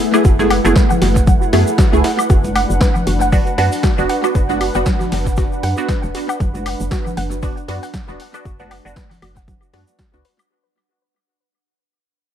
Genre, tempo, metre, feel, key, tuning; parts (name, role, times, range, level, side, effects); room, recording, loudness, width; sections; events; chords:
deep house; 117 BPM; 4/4; swing 56% on 16ths; A4 = 440 Hz
warm analog pad; sustained chords; 0.0-10.5 s; A3 to F#5; -25 LUFS; right 1 dB; chorus, sidechain pumping
filtered dub chord stab; stabs; 0.0-10.2 s; A3 to G#4; -19 LUFS; right 2 dB; phaser, analog chorus, cassette tape, sidechain pumping, tape echo
warbly tape-like pad; texture; 0.0-10.5 s; A3 to F#5; -25 LUFS; right 1 dB; chorus, built-in reverb, sidechain pumping
deep house drum kit; drums; 0.1-10.5 s; hi-hat, snare drum, woodblock; -25 LUFS; left 2 dB; overdrive, tape echo
tube shaker; percussion; 0.1-10.5 s; -36 LUFS; right 3 dB; tape echo
soft round pluck; arpeggios; 0.2-10.3 s; F#3 to F#5; -24 LUFS; left 1 dB; chorus, sidechain pumping, tape echo
woody FM bass; bass; 0.2-10.2 s; E1 to F#2; -19 LUFS; equal; sidechain pumping
breakbeat sampler-style drum kit; drums; 0.2-10.4 s; hi-hat, snare drum; -34 LUFS; equal; high-pass filter on hats, high-pass filter on snare
electronic kick drum; drums; 0.2-10.1 s; -16 LUFS; equal; overdrive
congas; percussion; 0.4-9.8 s; -27 LUFS; left 2 dB; sidechain pumping on perc, tape echo
digital ambience; echo-heavy mix; -13 LUFS; side -10 dB against mid
0.0-10.5 A section
drop 0.0-10.5; fade-out 2.3-10.5
0.0 F#m11; 2.3 Bm